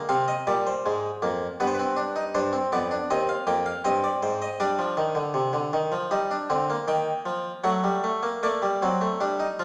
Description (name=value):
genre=classical, baroque-style 3-part fugue for harpsichord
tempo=79 BPM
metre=4/4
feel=straight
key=unclear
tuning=A4 = 441 Hz
part: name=harpsichord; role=solo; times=0.0-9.6 s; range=Eb2 to G5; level=-26 LUFS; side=equal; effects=none
room=wet recital hall reverb, RT60 1.3 s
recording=none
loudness=-26 LUFS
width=mono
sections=0.0-9.6 A section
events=none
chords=0.1 Dm7b5 (rootless); 1.6 G7; 3.1 Cm/Eb; 4.6 N.C.; 6.1 Ebmaj9/D; 7.6 D7/F#